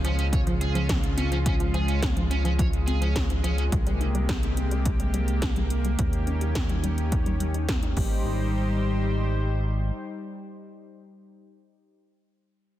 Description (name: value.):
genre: synthwave.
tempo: 106 BPM.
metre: 4/4.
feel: straight.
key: Ab major.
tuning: A4 = 441 Hz.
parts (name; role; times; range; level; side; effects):
lush unison pad; sustained chords; 0.0-11.0 s; C3 to C5; -31 LUFS; equal; chorus, sidechain pumping.
analog pluck; arpeggios; 0.0-8.5 s; F3 to Bb4; -34 LUFS; equal; chorus, vintage 12-bit sampler grit, tape echo.
overdriven electric guitar; riff; 0.0-3.6 s; Db4 to Db5; -34 LUFS; right 3 dB; wide subtle chorus, tape echo.
chorused synth bass; bass; 0.0-9.9 s; Ab1 to Eb2; -26 LUFS; equal; tube saturation.
80s electronic pad drums; drums; 0.0-8.1 s; crash cymbal, hi-hat, snare drum; -35 LUFS; equal; none.
electronic kick drum; drums; 0.3-8.1 s; none; -27 LUFS; equal; none.
room: light reverb, digital ambience.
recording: dense, heavily limited modern master.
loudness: -23 LUFS.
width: side -13 dB against mid.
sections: 0.0-8.3 A section; 8.3-10.5 B section.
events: filter sweep on synth arpeggio sound 0.0-8.3.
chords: 0.0 Dbmaj7; 3.7 Abmaj7/C; 6.0 Eb7; 8.0 Abmaj7.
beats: 0.33 0.89 | 1.46 2.02 2.59 3.16 | 3.72 4.29 4.86 5.42 | 5.99 6.55 7.12 7.68 | 8.25 8.82 9.38 9.95.